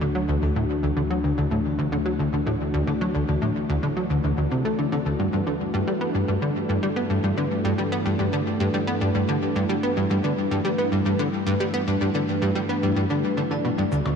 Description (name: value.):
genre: ambient, sequencer-driven space music.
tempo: 110 BPM.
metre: 4/4.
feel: straight.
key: G major.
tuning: A4 = 440 Hz.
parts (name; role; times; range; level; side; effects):
sweeping resonant pad; sustained chords; 0.0-14.2 s; E3 to F#4; -27 LUFS; left 2 dB; lush chorus.
vibraphone with soft mallets; arpeggios; 0.0-14.0 s; E4 to D5; -35 LUFS; right 4 dB; auto-pan, ping-pong delay.
plucky analog bass; riff; 0.0-14.1 s; D2 to B3; -23 LUFS; equal; analog chorus, ping-pong delay.
analog drone; bass; 0.0-14.2 s; D2 to G2; -33 LUFS; equal; chorus.
cabasa and percussion blips; percussion; 13.9-14.2 s; none; -36 LUFS; left 3 dB; ping-pong delay.
room: moderate huge ambient reverb, RT60 7.9 s.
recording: dark, warm production.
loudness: -21 LUFS.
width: side -6 dB against mid.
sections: 0.0-14.2 A section.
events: fade-in on vibraphone 0.0-14.2.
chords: 0.0 D; 5.2 G6.